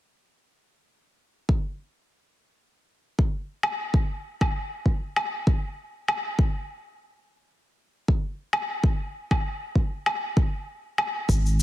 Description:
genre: organic downtempo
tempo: 98 BPM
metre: 4/4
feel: swing 55% on 16ths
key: unclear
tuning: A4 = 440 Hz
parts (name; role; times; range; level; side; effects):
- electronic kick drum; drums; 1.5-11.4 s; none; -22 LUFS; equal; none
- woodblock and shaker; drums; 3.6-11.6 s; none; -28 LUFS; left 1 dB; none
- warm sub bass; bass; 11.3-11.6 s; G#1; -21 LUFS; equal; sidechain pumping
room: light reverb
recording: heavily compressed radio sound, multiband compression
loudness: -24 LUFS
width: side -15 dB against mid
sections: 1.5-11.6 A section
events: none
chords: none

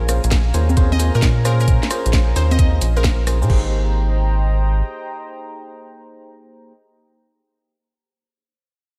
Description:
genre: UK garage, two-step garage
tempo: 132 BPM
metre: 4/4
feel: swing 67% on 16ths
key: Ab major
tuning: A4 = 441 Hz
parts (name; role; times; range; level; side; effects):
- glassy wavetable pluck; melody; 0.0-3.1 s; Bb4 to Eb5; -32 LUFS; equal; chorus, tape echo
- warm analog pad; sustained chords; 0.0-6.7 s; Db4 to Bb5; -34 LUFS; equal; chorus, sidechain pumping
- FM electric piano; stabs; 0.0-6.7 s; Bb3 to C5; -30 LUFS; equal; chorus, tape echo
- rubbery square bass; bass; 0.0-4.8 s; Ab1 to Bb2; -19 LUFS; equal; none
- garage drum kit; drums; 0.1-3.6 s; congas, crash cymbal, hi-hat, rim click, shaker, snare drum; -27 LUFS; equal; none
- electronic kick drum; drums; 0.3-3.6 s; none; -19 LUFS; equal; none
room: light reverb, digital ambience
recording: none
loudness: -17 LUFS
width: mono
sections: 0.0-3.5 A section; 3.5-7.1 B section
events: drop 0.0-3.5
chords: 0.0 Bbm9; 3.5 Abmaj7

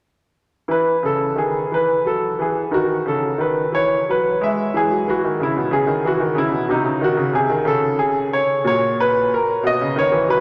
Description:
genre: classical, baroque-style suite movement for grand piano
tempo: 60 BPM (dotted quarters)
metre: 6/8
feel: rubato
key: unclear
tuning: A4 = 440 Hz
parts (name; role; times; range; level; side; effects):
- bright baby grand piano; solo; 0.7-10.4 s; A#2 to E5; -19 LUFS; equal; none
room: wet cathedral reverb, RT60 4.2 s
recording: none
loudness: -19 LUFS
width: mono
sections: 0.7-10.4 A section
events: none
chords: 0.7 C#m9; 2.7 B9; 3.7 E; 4.7 C#m; 6.7 Cdim; 7.6 N.C.; 8.6 F#/A#; 9.6 B

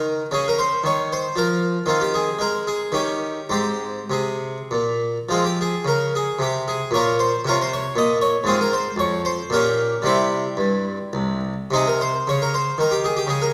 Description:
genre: classical, baroque-style suite movement for harpsichord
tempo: 99-121 BPM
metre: 3/4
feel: rubato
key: Ab major, F minor from 5.3 s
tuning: A4 = 441 Hz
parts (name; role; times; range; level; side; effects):
- harpsichord; solo; 0.0-13.5 s; C2 to Eb5; -22 LUFS; equal; none
room: wet recital hall reverb, RT60 1.4 s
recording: heard from further back in the room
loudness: -22 LUFS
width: mono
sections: 0.0-5.3 A section; 5.3-13.5 A section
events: none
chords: 0.3 Bbm/Db; 1.9 Ab/Eb; 2.9 Eb7; 3.5 Ab; 5.3 Fm; 6.9 Bbm; 8.4 Fm/Ab; 9.5 Gdim/Bb; 10.0 C; 11.7 Cm7

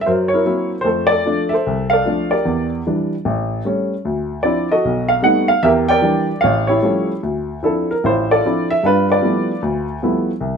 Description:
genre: solo jazz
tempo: 151 BPM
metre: 4/4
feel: swing 66% on 8ths, rubato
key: D minor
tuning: A4 = 440 Hz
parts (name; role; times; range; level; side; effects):
- warm baby grand piano; solo; 0.0-10.6 s; A1 to G5; -15 LUFS; equal; none
room: moderate club reverb, RT60 0.6 s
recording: minimal, uncompressed stereo recording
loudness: -15 LUFS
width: side -6 dB against mid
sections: 0.0-7.2 A section; 7.2-10.6 B section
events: none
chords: 0.1 F#7#11; 0.9 F6; 2.5 Em7b5; 3.3 A7; 4.1 Dm9; 4.8 B7b13; 5.6 Em7b5; 6.4 A7b13; 7.2 Dm9; 8.8 G13

